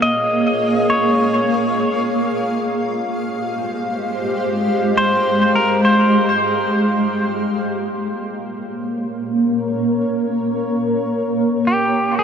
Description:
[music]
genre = ambient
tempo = free time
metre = none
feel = none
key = unclear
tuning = A4 = 442 Hz
[part]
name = clean lap steel guitar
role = melody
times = 0.0-6.4, 11.7-12.2 s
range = G4 to Eb5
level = -19 LUFS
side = equal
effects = dub echo
[part]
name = granular cloud pad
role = sustained chords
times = 0.0-12.2 s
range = Ab3 to G5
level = -18 LUFS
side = equal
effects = built-in reverb
[sound]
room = wet huge ambient reverb, RT60 7.1 s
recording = none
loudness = -16 LUFS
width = side -7 dB against mid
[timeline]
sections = 0.0-7.0 A section; 7.0-12.2 B section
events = filter sweep on ambient pad 7.0-12.2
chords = 0.0 Bbm7; 2.3 Fmadd9; 7.0 Bbm; 11.7 Fmadd9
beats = free time

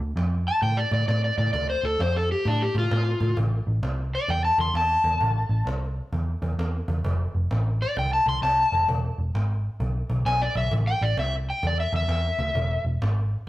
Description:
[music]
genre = blues rock power trio and southern rock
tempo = 131 BPM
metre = 4/4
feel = swing 64% on 8ths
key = A minor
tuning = A4 = 440 Hz
[part]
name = vintage muted picked electric bass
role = bass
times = 0.0-13.3 s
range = E1 to A2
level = -25 LUFS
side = equal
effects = none
[part]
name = cajon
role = drums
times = 0.2-13.2 s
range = none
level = -35 LUFS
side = right 1 dB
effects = none
[part]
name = overdriven slide guitar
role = melody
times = 0.5-12.8 s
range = D4 to C6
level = -24 LUFS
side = left 1 dB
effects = none
[sound]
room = moderate stone room reverb, RT60 1.2 s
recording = rough rehearsal-room recording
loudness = -22 LUFS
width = side -16 dB against mid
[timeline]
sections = 0.0-13.5 A section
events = electric slide guitar solo 0.0-13.5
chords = 0.0 Dm; 3.4 Am; 7.0 F; 8.9 E; 10.7 Am; 12.6 E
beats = 0.17 0.63 1.09 | 1.54 2.00 2.46 2.92 | 3.38 3.83 4.29 4.75 | 5.21 5.67 6.13 6.59 | 7.04 7.50 7.96 8.42 | 8.88 9.34 9.80 10.26 | 10.72 11.18 11.63 12.09 | 12.55 13.01

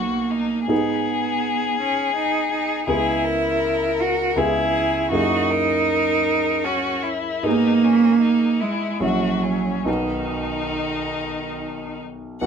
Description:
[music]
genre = classical, slow romantic movement for piano trio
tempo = 68-84 BPM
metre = 3/4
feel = rubato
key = B major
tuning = A4 = 440 Hz
[part]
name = rich violin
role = melody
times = 0.0-12.5 s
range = C#4 to F#5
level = -25 LUFS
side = left 7 dB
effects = none
[part]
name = rich cello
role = second line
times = 0.0-12.5 s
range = D#3 to F#4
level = -21 LUFS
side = right 4 dB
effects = none
[part]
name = warm concert grand piano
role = accompaniment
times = 0.0-12.5 s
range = A#1 to G#4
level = -26 LUFS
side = equal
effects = none
[sound]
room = moderate studio reverb, RT60 0.8 s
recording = minimal, uncompressed stereo recording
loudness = -18 LUFS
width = side -7 dB against mid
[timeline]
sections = 0.0-12.4 A section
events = none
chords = 0.0 B; 0.7 G#m; 2.9 C#m7; 5.1 F#9; 7.5 G#m; 9.0 F#7/A#; 9.9 B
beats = | 0.71 1.44 2.15 | 2.89 3.64 4.38 | 5.14 5.90 6.66 | 7.45 8.23 9.03 | 9.87 10.75 11.60 | 12.44

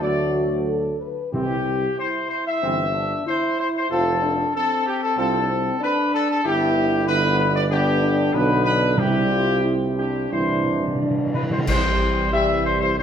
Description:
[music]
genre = classical, ceremonial fanfare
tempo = 93 BPM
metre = 4/4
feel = straight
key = C major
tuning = A4 = 440 Hz
[part]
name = mellow trumpet section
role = melody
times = 0.0-13.0 s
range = G4 to E5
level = -22 LUFS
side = left 2 dB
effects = none
[part]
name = mellow French horn section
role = sustained chords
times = 0.0-13.0 s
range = G3 to B4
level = -25 LUFS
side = left 1 dB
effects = none
[part]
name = warm trombone section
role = sustained chords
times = 0.0-13.0 s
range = D3 to D4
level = -27 LUFS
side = right 3 dB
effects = none
[part]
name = warm tuba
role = bass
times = 0.0-13.0 s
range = F1 to D2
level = -26 LUFS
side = right 2 dB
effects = none
[part]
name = timpani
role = percussion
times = 1.3-2.3, 9.0-11.7 s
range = C3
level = -28 LUFS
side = right 1 dB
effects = none
[part]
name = cymbal swell, clash cymbals and concert bass drum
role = percussion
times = 9.0-12.9 s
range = none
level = -28 LUFS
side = left 1 dB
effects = none
[sound]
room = wet scoring stage reverb, RT60 1.5 s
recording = none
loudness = -19 LUFS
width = side -8 dB against mid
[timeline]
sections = 0.0-11.7 A section; 11.7-13.0 B section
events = timpani fill 10.3-11.7; band accent 11.7-12.3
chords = 0.0 D; 1.3 C; 3.9 F; 6.5 G; 9.0 C5; 10.3 Cadd9; 11.7 C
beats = 0.01 0.67 | 1.33 1.98 2.62 3.27 | 3.91 4.54 5.18 5.82 | 6.45 7.08 7.71 8.34 | 8.97 9.63 10.32 11.00 | 11.68 12.32 12.97

